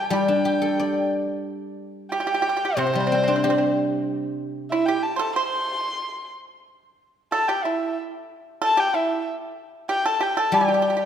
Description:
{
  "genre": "chinese traditional, Chinese chamber ensemble",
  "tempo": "92 BPM",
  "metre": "2/4",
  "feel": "rubato",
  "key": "G zhi mode",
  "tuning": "A4 = 440 Hz",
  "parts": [
    { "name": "dark erhu", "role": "melody", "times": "0.0-11.1 s", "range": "C5 to C6", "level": "-24 LUFS", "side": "left 1 dB", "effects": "none" },
    { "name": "pipa", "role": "second line", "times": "0.0-11.0 s", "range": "C4 to C5", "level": "-26 LUFS", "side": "right 4 dB", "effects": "none" },
    { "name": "guzheng", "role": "accompaniment", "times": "0.0-4.7, 10.5-11.1 s", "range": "C3 to D5", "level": "-22 LUFS", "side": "left 1 dB", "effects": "none" }
  ],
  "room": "moderate scoring stage reverb, RT60 1.9 s",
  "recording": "none",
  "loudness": "-20 LUFS",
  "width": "side -9 dB against mid",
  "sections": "0.0-1.5 A section; 1.5-11.1 B section",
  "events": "none",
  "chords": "none",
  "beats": "| 0.12 0.79 | 1.46 2.12 | 2.78 3.43 | 4.07 4.71 | 5.36 6.01 | 6.67 7.33 | 7.98 8.62 | 9.25 9.89 | 10.52"
}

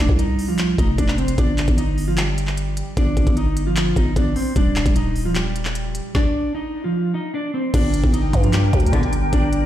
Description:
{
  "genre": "hip hop, trap",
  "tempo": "151 BPM",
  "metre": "4/4",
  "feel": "half-time",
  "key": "G minor",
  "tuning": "A4 = 440 Hz",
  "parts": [
    { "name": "clean electric guitar", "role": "melody", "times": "0.0-9.7 s", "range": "F3 to Eb5", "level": "-23 LUFS", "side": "equal", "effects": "low-pass filter, ping-pong delay" },
    { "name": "growling 808-style bass", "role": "bass", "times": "0.0-9.7 s", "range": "Eb1 to G2", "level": "-21 LUFS", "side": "equal", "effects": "none" },
    { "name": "trap drum kit", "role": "drums", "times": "0.1-9.6 s", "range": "crash cymbal, handclaps, hi-hat, kick drum, snare drum", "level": "-21 LUFS", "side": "equal", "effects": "none" },
    { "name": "mellow large flute ensemble", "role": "sustained chords", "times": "7.7-9.7 s", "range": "D4 to G5", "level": "-27 LUFS", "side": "left 1 dB", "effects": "none" },
    { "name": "warm studio string section", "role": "stabs", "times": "8.9-9.1 s", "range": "Bb1 to D3", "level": "-27 LUFS", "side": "left 2 dB", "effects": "none" }
  ],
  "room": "little or no reverb",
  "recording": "played on a big sound system in a bare room, stone room reverb",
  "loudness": "-17 LUFS",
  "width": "side -12 dB against mid",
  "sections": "0.0-7.7 A section; 7.7-9.7 B section",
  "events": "none",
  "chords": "0.0 F5; 1.4 G5; 4.6 Eb; 6.1 F5; 7.7 Gm",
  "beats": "0.19 0.59 0.98 | 1.38 1.78 2.18 2.57 | 2.97 3.37 3.77 4.16 | 4.56 4.96 5.35 5.75 | 6.15 6.55 6.94 7.34 | 7.74 8.14 8.53 8.93 | 9.33"
}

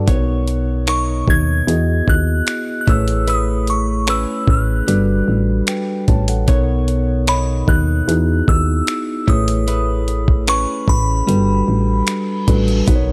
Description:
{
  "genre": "contemporary R&B",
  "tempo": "75 BPM",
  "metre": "4/4",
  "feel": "straight",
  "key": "unclear",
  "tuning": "A4 = 440 Hz",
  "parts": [
    { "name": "mellow tine electric piano", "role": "accompaniment", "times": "0.0-13.1 s", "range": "B2 to A5", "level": "-24 LUFS", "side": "equal", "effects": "none" },
    { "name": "direct-recorded clean electric guitar", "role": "arpeggios", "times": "0.0-13.1 s", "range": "G3 to C#5", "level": "-28 LUFS", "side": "equal", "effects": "none" },
    { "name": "solid FM bass", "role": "bass", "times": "0.0-13.1 s", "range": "G1 to E2", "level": "-20 LUFS", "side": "equal", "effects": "none" },
    { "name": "dusty soul sampler-style drum kit", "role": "drums", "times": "0.1-13.1 s", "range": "finger snaps, hi-hat, kick drum", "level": "-19 LUFS", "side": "equal", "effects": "none" },
    { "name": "glassy synth bell", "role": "melody", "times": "0.9-12.4 s", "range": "B5 to G#6", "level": "-25 LUFS", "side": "equal", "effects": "chorus" },
    { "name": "reverse cymbal and impact", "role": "sound effects", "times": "12.2-13.1 s", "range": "none", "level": "-34 LUFS", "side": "equal", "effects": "none" }
  ],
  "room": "little or no reverb",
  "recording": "none",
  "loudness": "-17 LUFS",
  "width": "mono",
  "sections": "0.0-12.9 A section",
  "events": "reverse cymbal 12.2-12.9; impact 12.9",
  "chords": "0.1 Bmaj9; 1.7 Emaj9; 2.9 Amaj9; 4.9 Gmaj9; 6.5 Bmaj9; 8.1 Emaj9; 9.3 Amaj9; 11.3 Gmaj9",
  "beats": "| 0.08 0.88 1.68 2.48 | 3.28 4.08 4.88 5.68 | 6.48 7.28 8.08 8.88 | 9.68 10.48 11.28 12.08 | 12.88"
}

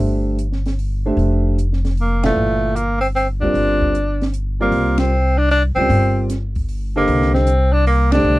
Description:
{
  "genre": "modal jazz",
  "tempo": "152 BPM",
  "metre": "3/4",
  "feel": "swing 67% on 8ths",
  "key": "C dorian from 4.7 s",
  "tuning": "A4 = 441 Hz",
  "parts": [
    { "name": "warm grand piano", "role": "accompaniment", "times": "0.0-8.4 s", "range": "Bb2 to F5", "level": "-21 LUFS", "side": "right 1 dB", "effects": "none" },
    { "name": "upright bass", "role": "bass", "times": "0.0-8.4 s", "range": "F1 to Db2", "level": "-18 LUFS", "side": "equal", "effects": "none" },
    { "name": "compact cocktail drum kit", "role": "drums", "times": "0.4-8.2 s", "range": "hi-hat, kick drum, ride cymbal, snare drum", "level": "-25 LUFS", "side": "right 1 dB", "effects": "none" },
    { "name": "warm tenor saxophone", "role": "melody", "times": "2.0-8.4 s", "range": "A3 to D4", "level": "-18 LUFS", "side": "equal", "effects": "none" }
  ],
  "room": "little or no reverb",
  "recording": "dry, close 1970s-style studio recording",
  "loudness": "-15 LUFS",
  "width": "side -18 dB against mid",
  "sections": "0.0-4.7 A section; 4.7-8.4 B section",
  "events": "band accent 2.2, 4.9, 8.1",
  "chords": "0.0 Bb; 4.7 Cm11",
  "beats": "| 0.00 0.39 0.79 | 1.18 1.58 1.97 | 2.37 2.76 3.15 | 3.55 3.94 4.34 | 4.73 5.12 5.52 | 5.91 6.30 6.70 | 7.09 7.48 7.88 | 8.27"
}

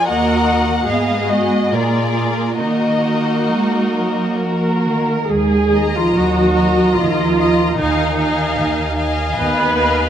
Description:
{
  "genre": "classical, slow romantic movement for string orchestra",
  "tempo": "65-76 BPM",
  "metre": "3/4",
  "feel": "rubato",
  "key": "Eb minor",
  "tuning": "A4 = 436 Hz",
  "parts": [
    { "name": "warm studio violin section", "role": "melody", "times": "0.0-10.1 s", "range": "D5 to Bb5", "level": "-23 LUFS", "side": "left 4 dB", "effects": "none" },
    { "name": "warm studio violin section", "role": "second line", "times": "0.0-10.1 s", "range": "Gb4 to F5", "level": "-22 LUFS", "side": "left 2 dB", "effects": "none" },
    { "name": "rich studio viola section", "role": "accompaniment", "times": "0.0-10.1 s", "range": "Bb3 to Cb5", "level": "-18 LUFS", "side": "right 1 dB", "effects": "none" },
    { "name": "dark studio cello section", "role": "bass", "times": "0.1-10.1 s", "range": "Eb2 to Cb4", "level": "-20 LUFS", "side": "right 2 dB", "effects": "none" },
    { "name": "warm studio double bass section", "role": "bass", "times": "5.3-10.1 s", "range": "Eb2", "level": "-21 LUFS", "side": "right 2 dB", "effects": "none" }
  ],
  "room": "moderate scoring stage reverb, RT60 2.0 s",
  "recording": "none",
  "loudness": "-14 LUFS",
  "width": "side -9 dB against mid",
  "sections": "0.0-5.3 A section; 5.3-10.1 A section",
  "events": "none",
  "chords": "0.1 Ebm; 0.9 Abm; 1.7 Bb7; 2.6 Ebm; 7.8 Fm7b5/Eb",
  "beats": "| 0.09 0.89 1.72 | 2.60 3.52 4.42 | 5.31 6.14 6.97 | 7.78 8.58 9.37"
}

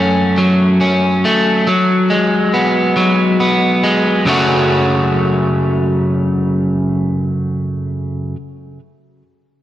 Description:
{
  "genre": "rock",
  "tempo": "46 BPM (dotted quarters)",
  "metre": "6/8",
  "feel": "straight",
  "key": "F# minor",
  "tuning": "A4 = 440 Hz",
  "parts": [
    { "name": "electric guitar at the edge of break-up", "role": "solo", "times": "0.0-8.4 s", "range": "F#2 to F#4", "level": "-12 LUFS", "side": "equal", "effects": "digital delay" }
  ],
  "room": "moderate lush hall reverb, RT60 2.1 s",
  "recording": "big arena sound",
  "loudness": "-12 LUFS",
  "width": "side -13 dB against mid",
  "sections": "0.0-4.3 A section; 4.3-6.8 B section",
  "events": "none",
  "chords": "0.0 F#m; 1.7 F#sus24; 4.3 F#m",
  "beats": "0.38 | 1.67 2.96 | 4.26 5.55"
}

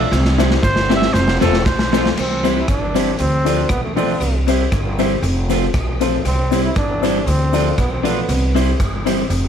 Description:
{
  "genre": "ska",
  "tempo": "118 BPM",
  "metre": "4/4",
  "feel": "straight",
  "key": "C major",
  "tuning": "A4 = 440 Hz",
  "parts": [
    { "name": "clear trumpet", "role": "melody", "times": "0.0-2.2 s", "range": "A4 to E5", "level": "-22 LUFS", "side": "right 3 dB", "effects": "none" },
    { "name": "electric guitar at the edge of break-up", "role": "accompaniment", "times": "0.0-9.2 s", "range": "F3 to G4", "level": "-24 LUFS", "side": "right 11 dB", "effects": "spring reverb" },
    { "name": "dark upright piano", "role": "stabs", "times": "0.0-9.2 s", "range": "C4 to D5", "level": "-22 LUFS", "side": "left 13 dB", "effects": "none" },
    { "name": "upright bass", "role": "bass", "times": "0.0-9.5 s", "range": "E1 to D2", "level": "-19 LUFS", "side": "equal", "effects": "none" },
    { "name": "raw garage drum kit", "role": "drums", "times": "0.1-9.4 s", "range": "crash cymbal, hi-hat, kick drum, rim click, snare drum", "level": "-21 LUFS", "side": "equal", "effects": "tape echo" },
    { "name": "cabasa", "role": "percussion", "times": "0.1-9.4 s", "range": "none", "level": "-42 LUFS", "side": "left 16 dB", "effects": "none" },
    { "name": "clear trombone", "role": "melody", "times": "2.2-8.6 s", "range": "A3 to E4", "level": "-23 LUFS", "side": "right 2 dB", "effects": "none" }
  ],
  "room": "light reverb, small room ambience",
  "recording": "1960s-style stereo with parts hard left and right",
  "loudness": "-14 LUFS",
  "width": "side -8 dB against mid",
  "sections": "0.0-2.2 A section; 2.2-9.5 B section",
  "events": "trumpet solo 0.0-2.2; drum fill 0.1-2.2",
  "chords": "0.1 C; 1.1 F; 2.2 C; 3.2 Dm; 4.2 C; 5.2 F; 6.3 C; 7.3 Dm; 8.3 C",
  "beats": "| 0.13 0.64 1.15 1.66 | 2.17 2.68 3.19 3.70 | 4.21 4.72 5.23 5.74 | 6.25 6.76 7.27 7.78 | 8.29 8.80 9.31"
}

